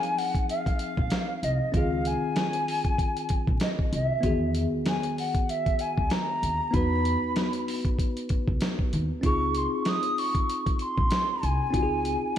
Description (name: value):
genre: hip hop, jazz-hop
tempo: 96 BPM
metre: 4/4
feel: swing 57% on 16ths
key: Db major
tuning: A4 = 440 Hz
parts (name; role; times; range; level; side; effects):
- mellow jazz flute; melody; 0.0-12.4 s; Eb5 to Eb6; -29 LUFS; equal; slapback echo
- bell-like tine electric piano; accompaniment; 0.0-12.4 s; Eb3 to B4; -31 LUFS; left 2 dB; medium stereo tremolo
- dusty soul sampler-style drum kit; drums; 0.0-12.4 s; hi-hat, kick drum, snare drum; -28 LUFS; equal; none
- upright bass; bass; 1.0-12.1 s; Bb1 to E2; -29 LUFS; equal; none
room: moderate lush hall reverb, RT60 2.0 s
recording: big arena sound, vinyl crackle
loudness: -24 LUFS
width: side -10 dB against mid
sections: 0.0-12.4 A section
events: none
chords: 0.0 Dbmaj9 (rootless); 4.2 Emaj9; 9.2 Dbmaj9